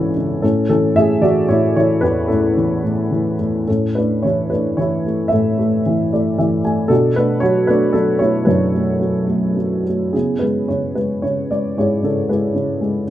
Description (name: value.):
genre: classical, lyrical solo piano.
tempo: 104-117 BPM.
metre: 3/4.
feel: rubato.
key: unclear.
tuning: A4 = 441 Hz.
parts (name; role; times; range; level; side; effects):
dark upright piano; solo; 0.0-13.1 s; G#1 to G#5; -15 LUFS; equal; none.
room: light reverb.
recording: minimal, uncompressed stereo recording.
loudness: -15 LUFS.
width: side -12 dB against mid.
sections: 0.0-10.1 A section; 10.1-13.1 A section.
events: upright piano fill 5.9-6.9.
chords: 0.4 Amaj7; 3.7 Aadd11; 6.9 Bm7; 10.1 C#m7.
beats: | 0.43 0.95 1.48 | 2.02 2.56 3.11 | 3.67 4.23 4.78 | 5.32 5.85 6.38 | 6.90 7.42 7.94 | 8.47 9.01 9.57 | 10.14 10.69 11.24 | 11.77 12.29 12.81.